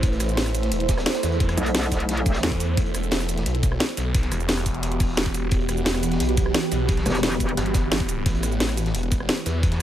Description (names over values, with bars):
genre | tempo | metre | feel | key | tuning
dark technical drum and bass | 175 BPM | 4/4 | straight | E minor | A4 = 440 Hz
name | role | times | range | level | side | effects
swarming drone | sustained chords | 0.0-9.8 s | E3 to C5 | -28 LUFS | right 2 dB | built-in reverb, sidechain pumping
snarling distorted saw bass | bass | 0.0-9.8 s | E1 to E2 | -25 LUFS | equal | distortion, overdrive, sidechain pumping
crunchy breakbeat drum kit | drums | 0.0-9.8 s | hi-hat, snare drum | -37 LUFS | equal | none
drum and bass drum kit | drums | 0.0-9.8 s | hi-hat, rim click, shaker, snare drum | -26 LUFS | equal | none
electronic kick drum | drums | 0.0-9.7 s | none | -23 LUFS | equal | none
metallic wobble bass | bass | 1.6-2.4, 7.1-7.6 s | E1 to B1 | -24 LUFS | equal | chorus
room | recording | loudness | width
digital ambience | none | -20 LUFS | side -12 dB against mid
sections
0.0-9.8 A section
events
none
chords
0.0 Am; 2.8 Em; 8.3 Am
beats
| 0.03 0.37 0.72 1.06 | 1.40 1.75 2.09 2.43 | 2.77 3.12 3.46 3.80 | 4.14 4.49 4.83 5.17 | 5.52 5.86 6.20 6.54 | 6.89 7.23 7.57 7.92 | 8.26 8.60 8.95 9.29 | 9.63